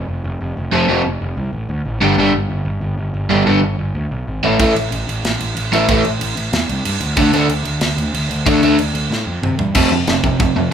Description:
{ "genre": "punk rock", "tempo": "186 BPM", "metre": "4/4", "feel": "straight", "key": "unclear", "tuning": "A4 = 441 Hz", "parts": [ { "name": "fuzz picked electric bass", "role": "bass", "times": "0.0-10.7 s", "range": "F1 to C3", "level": "-21 LUFS", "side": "equal", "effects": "overdrive" }, { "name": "overdriven electric guitar", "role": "riff", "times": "0.7-10.7 s", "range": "F2 to D4", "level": "-14 LUFS", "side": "equal", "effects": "none" }, { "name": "tight metal drum kit", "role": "drums", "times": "4.6-10.5 s", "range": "crash cymbal, kick drum, snare drum, toms", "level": "-20 LUFS", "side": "right 1 dB", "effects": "none" } ], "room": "light reverb", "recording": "band playing live in one room", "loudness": "-15 LUFS", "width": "side -8 dB against mid", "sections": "0.0-9.8 A section", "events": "half time 0.0-9.8; drum fill 9.1-9.8", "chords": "0.0 F; 2.0 G5; 4.4 A5; 7.2 D5; 9.8 F5" }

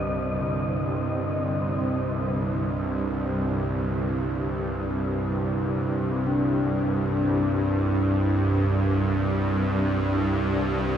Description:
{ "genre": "dark ambient drone", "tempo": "free time", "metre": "none", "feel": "none", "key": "C minor", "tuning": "A4 = 436 Hz", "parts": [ { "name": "bronze singing bowl", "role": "arpeggios", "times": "0.0-11.0 s", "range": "D3 to D4", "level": "-31 LUFS", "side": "left 1 dB", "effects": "diffuse ambient delay" }, { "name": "bowed-like drone", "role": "drone", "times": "0.0-11.0 s", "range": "C2 to G2", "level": "-24 LUFS", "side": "right 1 dB", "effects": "built-in reverb" }, { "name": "wind-like tuned noise texture", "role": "texture", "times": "0.0-2.1 s", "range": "C4 to Eb5", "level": "-34 LUFS", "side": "right 1 dB", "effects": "built-in reverb" } ], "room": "wet huge ambient reverb, RT60 7.5 s", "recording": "dreamy mix soaked in reverb", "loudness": "-23 LUFS", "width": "side -9 dB against mid", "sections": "0.0-2.0 A section; 2.0-11.0 B section", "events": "none", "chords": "0.0 Cmadd9" }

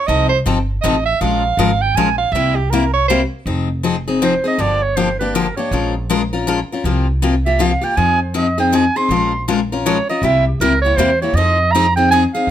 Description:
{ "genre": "acoustic string swing (jazz manouche)", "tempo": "160 BPM", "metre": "3/4", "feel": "swing 62% on 8ths", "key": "F minor", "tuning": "A4 = 443 Hz", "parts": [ { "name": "warm soprano saxophone", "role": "second line", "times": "0.0-3.2 s", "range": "G4 to Ab5", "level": "-17 LUFS", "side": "right 6 dB", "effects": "none" }, { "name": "picked steel-string acoustic guitar", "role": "accompaniment", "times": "0.1-12.5 s", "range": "C3 to Bb4", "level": "-18 LUFS", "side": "left 5 dB", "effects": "none" }, { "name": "upright bass", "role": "bass", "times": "0.1-12.5 s", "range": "F1 to F2", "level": "-20 LUFS", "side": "right 1 dB", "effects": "none" }, { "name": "warm clarinet", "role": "melody", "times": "4.2-12.5 s", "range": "G4 to C6", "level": "-16 LUFS", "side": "right 4 dB", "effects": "none" } ], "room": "light reverb", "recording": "close, detailed microphones", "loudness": "-14 LUFS", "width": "side -10 dB against mid", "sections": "0.0-3.5 A section; 3.5-12.5 A section", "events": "soprano saxophone solo 0.0-3.5; clarinet solo 3.5-12.5", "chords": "0.1 F7; 1.2 Bbm7; 2.3 C7; 3.5 Fm7; 4.6 Gm7; 5.7 Bbm7; 6.8 C7sus4; 8.0 Fm7; 9.1 Bbm7; 10.2 C7; 11.4 Fm7" }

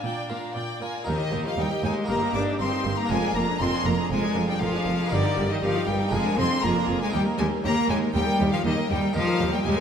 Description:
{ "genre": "classical, baroque-style concerto movement with solo episodes", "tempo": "119 BPM", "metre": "4/4", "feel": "straight", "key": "Eb major", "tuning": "A4 = 442 Hz", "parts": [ { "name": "clear chamber violin section", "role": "melody", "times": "0.0-9.8 s", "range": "D5 to D6", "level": "-29 LUFS", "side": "left 3 dB", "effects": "none" }, { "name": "rich cello", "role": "melody", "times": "0.0-9.8 s", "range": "D3 to D4", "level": "-27 LUFS", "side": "left 1 dB", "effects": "none" }, { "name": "clear chamber violin section", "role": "second line", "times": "0.0-9.8 s", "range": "G4 to Ab5", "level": "-33 LUFS", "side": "left 2 dB", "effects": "none" }, { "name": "harpsichord", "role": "accompaniment", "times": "0.0-9.8 s", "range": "Eb2 to Bb4", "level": "-32 LUFS", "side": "equal", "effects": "none" }, { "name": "rich studio viola section", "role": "accompaniment", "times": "0.0-9.8 s", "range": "G3 to D5", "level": "-32 LUFS", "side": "right 2 dB", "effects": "none" }, { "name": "dark chamber cello section", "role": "bass", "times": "0.0-9.7 s", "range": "Eb2 to Bb2", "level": "-30 LUFS", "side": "right 3 dB", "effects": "none" }, { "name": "rich chamber double bass section", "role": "bass", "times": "1.1-9.7 s", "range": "F1 to Eb2", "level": "-31 LUFS", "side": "right 3 dB", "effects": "none" } ], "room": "wet concert hall reverb, RT60 2.0 s", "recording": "none", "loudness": "-22 LUFS", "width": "side -7 dB against mid", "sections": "0.0-1.1 A section; 1.1-9.8 B section", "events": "none", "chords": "0.0 Bb; 1.1 Eb; 2.1 Eb/G; 3.1 Bb7/F; 5.1 Eb/G; 6.1 Bb7/F; 7.1 Eb" }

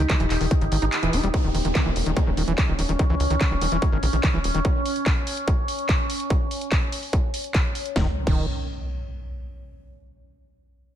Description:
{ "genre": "psychedelic trance", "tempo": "145 BPM", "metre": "4/4", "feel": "straight", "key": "unclear", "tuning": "A4 = 443 Hz", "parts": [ { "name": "overtone-sweeping drone", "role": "sustained chords", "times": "0.0-8.0 s", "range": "Db4 to Db5", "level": "-29 LUFS", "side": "equal", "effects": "chorus, built-in reverb, sidechain pumping" }, { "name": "overdriven acid bass", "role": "riff", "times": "0.0-4.6, 8.0-8.5 s", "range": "Eb3 to Fb4", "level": "-28 LUFS", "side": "moving between left 5 dB and right 3 dB", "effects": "distortion, auto-pan, sidechain pumping, tape echo" }, { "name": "tight sequencer bass", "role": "bass", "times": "0.0-4.6, 8.0-8.5 s", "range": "Eb1 to Db2", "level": "-25 LUFS", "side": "equal", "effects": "none" }, { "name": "electronic kick drum", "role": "drums", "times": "0.1-8.4 s", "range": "none", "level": "-22 LUFS", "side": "equal", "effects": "distortion" }, { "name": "techno drum kit", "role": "drums", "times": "0.1-8.4 s", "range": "crash cymbal, handclaps, hi-hat, snare drum", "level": "-29 LUFS", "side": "equal", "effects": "none" }, { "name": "downlifter and impact", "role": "sound effects", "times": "1.3-4.6, 8.0-9.6 s", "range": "none", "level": "-32 LUFS", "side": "equal", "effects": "none" } ], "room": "digital ambience", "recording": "none", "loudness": "-20 LUFS", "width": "side -10 dB against mid", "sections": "0.0-1.3 A section; 1.3-8.0 B section; 8.0-9.6 C section", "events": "drop 0.0-1.3; kick drops out 0.9-1.3; band accent 0.9", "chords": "0.0 Eb5; 8.0 N.C." }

